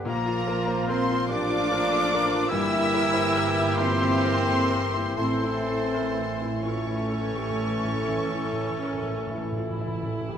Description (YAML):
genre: classical, romantic movement for piano and orchestra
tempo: 40-50 BPM (dotted quarters)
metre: 12/8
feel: rubato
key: unclear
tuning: A4 = 442 Hz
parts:
  - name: clear concert grand piano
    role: melody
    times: 0.0-10.4 s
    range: G2 to D5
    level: -32 LUFS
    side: left 3 dB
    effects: none
  - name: warm clarinet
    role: second line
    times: 0.0-10.4 s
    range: A4 to Bb4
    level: -37 LUFS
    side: left 2 dB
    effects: none
  - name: clear bassoon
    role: accompaniment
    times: 0.0-10.4 s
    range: E3 to F3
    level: -36 LUFS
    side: right 4 dB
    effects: none
  - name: dark studio viola section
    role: accompaniment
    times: 0.0-10.4 s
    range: A3 to F4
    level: -35 LUFS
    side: right 1 dB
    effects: none
  - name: warm studio double bass section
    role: bass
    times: 0.0-10.4 s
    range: G1 to Bb1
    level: -33 LUFS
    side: right 3 dB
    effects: none
  - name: warm studio violin section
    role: melody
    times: 0.1-9.6 s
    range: Bb5 to E6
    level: -34 LUFS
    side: left 4 dB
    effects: none
  - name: bright concert flute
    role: second line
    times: 0.1-9.5 s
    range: Bb5 to E6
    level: -32 LUFS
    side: left 2 dB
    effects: none
  - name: warm cor anglais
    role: second line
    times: 0.1-9.5 s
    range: Bb3 to E4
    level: -36 LUFS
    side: right 2 dB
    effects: none
  - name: warm studio violin section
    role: second line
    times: 0.1-9.5 s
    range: Bb4 to E5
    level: -35 LUFS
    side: left 1 dB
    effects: none
  - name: mellow French horn section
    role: sustained chords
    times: 0.1-9.6 s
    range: Bb3 to E4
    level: -33 LUFS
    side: left 2 dB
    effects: none
  - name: mellow trombone section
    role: sustained chords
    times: 0.1-10.4 s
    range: E3 to Bb3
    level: -36 LUFS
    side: right 3 dB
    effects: none
  - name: warm trumpet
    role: stabs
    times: 0.1-10.4 s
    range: F4 to A4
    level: -34 LUFS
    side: equal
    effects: none
  - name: rich studio cello section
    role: bass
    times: 0.1-9.5 s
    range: Bb3 to E4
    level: -33 LUFS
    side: right 1 dB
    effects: none
  - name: timpani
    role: percussion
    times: 5.2-10.4 s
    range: A2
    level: -36 LUFS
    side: right 1 dB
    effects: none
room: wet scoring stage reverb, RT60 2.1 s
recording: none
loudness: -23 LUFS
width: side -8 dB against mid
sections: 0.0-10.4 A section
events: timpani fill 5.2-10.4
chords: 0.1 Bbmaj7; 2.5 Edim/G; 5.2 A